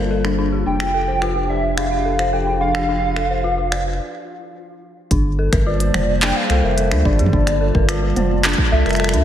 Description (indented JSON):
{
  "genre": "IDM",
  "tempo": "108 BPM",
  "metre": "4/4",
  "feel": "straight",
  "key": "unclear",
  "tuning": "A4 = 443 Hz",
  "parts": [
    { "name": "warbly nostalgic lead", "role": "melody", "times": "0.0-9.2 s", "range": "D5 to G5", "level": "-22 LUFS", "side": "right 1 dB", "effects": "analog chorus, analog delay" },
    { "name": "warbly tape-like pad", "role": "sustained chords", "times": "0.0-9.2 s", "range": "F3 to A5", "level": "-25 LUFS", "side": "equal", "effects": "chorus, built-in reverb, sidechain pumping" },
    { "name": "dark detuned synth bell", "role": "arpeggios", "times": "0.0-9.2 s", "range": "D4 to F5", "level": "-25 LUFS", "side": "left 3 dB", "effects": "chorus, analog delay" },
    { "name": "warm sub bass", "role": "bass", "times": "0.0-9.2 s", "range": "F1 to G2", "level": "-20 LUFS", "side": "equal", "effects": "tube saturation" },
    { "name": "flickering grainy texture", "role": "texture", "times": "0.0-4.0 s", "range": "F4", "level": "-37 LUFS", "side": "right 1 dB", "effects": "none" },
    { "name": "glitchy drum kit", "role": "drums", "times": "0.2-9.2 s", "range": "finger snaps, handclaps, hi-hat, toms", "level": "-24 LUFS", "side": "equal", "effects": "ping-pong delay" },
    { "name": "electronic kick drum", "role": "drums", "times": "5.1-8.7 s", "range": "none", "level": "-19 LUFS", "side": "equal", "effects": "none" }
  ],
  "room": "moderate lush hall reverb, RT60 2.0 s, digital ambience",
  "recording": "dreamy mix soaked in reverb",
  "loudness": "-16 LUFS",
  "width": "side -10 dB against mid",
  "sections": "0.0-5.1 A section; 5.1-9.2 B section",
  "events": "break 4.0-5.1",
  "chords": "0.0 Gm11; 0.7 F69; 5.1 Gm11",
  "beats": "0.11 | 0.66 1.22 1.77 2.33 | 2.89 3.44 4.00 4.55 | 5.11 5.66 6.22 6.78 | 7.33 7.89 8.44 9.00"
}